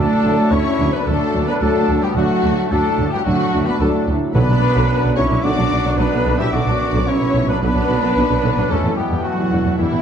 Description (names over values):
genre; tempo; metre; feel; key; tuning
cinematic; 110 BPM; 4/4; straight; B minor; A4 = 440 Hz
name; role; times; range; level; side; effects
dark symphonic violin section; melody; 0.0-10.0 s; E5 to E6; -30 LUFS; left 5 dB; none
dark symphonic violin section; second line; 0.0-10.0 s; E4 to E5; -25 LUFS; left 4 dB; none
mellow hollow concert flute; second line; 0.0-10.0 s; E5 to E6; -28 LUFS; left 2 dB; none
warm cor anglais; second line; 0.0-10.0 s; E4 to E5; -28 LUFS; right 1 dB; none
dark chamber viola section; accompaniment; 0.0-10.0 s; D3 to D4; -26 LUFS; right 1 dB; none
clear trombone section; sustained chords; 0.0-10.0 s; F#2 to F#3; -28 LUFS; right 2 dB; none
warm French horn section; sustained chords; 0.0-10.0 s; D3 to F#4; -26 LUFS; left 5 dB; none
mellow trumpet section; stabs; 0.0-10.0 s; G3 to G4; -24 LUFS; right 1 dB; none
rich symphonic cello section; bass; 0.0-10.0 s; E3 to E4; -22 LUFS; right 2 dB; none
warm symphonic double bass section; bass; 0.0-10.0 s; B1 to E2; -21 LUFS; right 2 dB; none
warm tuba; bass; 0.0-9.9 s; E1 to D2; -24 LUFS; right 3 dB; none
timpani; percussion; 4.4-5.1 s; B2; -20 LUFS; equal; none
room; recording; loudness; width
wet scoring stage reverb, RT60 1.6 s; dark, warm production; -15 LUFS; side -8 dB against mid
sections
0.0-10.0 A section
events
none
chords
0.0 D; 4.3 Bm; 8.7 Em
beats
0.52 1.07 1.61 | 2.16 2.71 3.26 3.80 | 4.35 4.89 5.44 5.98 | 6.52 7.07 7.61 8.16 | 8.70 9.24 9.79